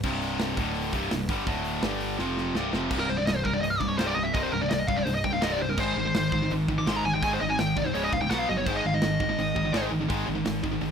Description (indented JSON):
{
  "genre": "heavy metal",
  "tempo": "167 BPM",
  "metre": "4/4",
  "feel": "straight",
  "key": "C minor",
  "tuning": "A4 = 440 Hz",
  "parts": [
    { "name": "high-gain distorted guitar", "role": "riff", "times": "0.0-10.9 s", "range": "C2 to B3", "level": "-27 LUFS", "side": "equal", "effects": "distortion" },
    { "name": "picked electric bass", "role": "bass", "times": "0.0-10.9 s", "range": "C1 to B1", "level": "-36 LUFS", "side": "equal", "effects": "none" },
    { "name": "modern studio drum kit", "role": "drums", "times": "0.0-10.9 s", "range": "crash cymbal, hi-hat, kick drum, snare drum", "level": "-33 LUFS", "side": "right 1 dB", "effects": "none" },
    { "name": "high-gain lead guitar", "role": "melody", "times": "3.0-9.8 s", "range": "Bb4 to D6", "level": "-28 LUFS", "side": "equal", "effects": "distortion, digital delay" }
  ],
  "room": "light reverb",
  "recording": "rough home demo mix",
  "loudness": "-24 LUFS",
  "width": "side -7 dB against mid",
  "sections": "0.0-2.9 A section; 2.9-10.9 B section",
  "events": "drum fill 2.2-2.9; lead electric guitar solo 2.9-10.9",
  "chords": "0.0 C5; 0.6 D5; 0.9 C5; 1.5 D5; 1.8 G5; 2.2 F5; 2.5 C5; 5.8 Ab; 7.9 Db5; 8.3 B5; 8.7 Ab5",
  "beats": "| 0.04 0.39 0.75 1.11 | 1.47 1.83 2.19 2.55 | 2.91 3.27 3.63 3.99 | 4.35 4.71 5.07 5.43 | 5.79 6.15 6.51 6.87 | 7.22 7.58 7.94 8.30 | 8.66 9.02 9.38 9.74 | 10.10 10.46 10.82"
}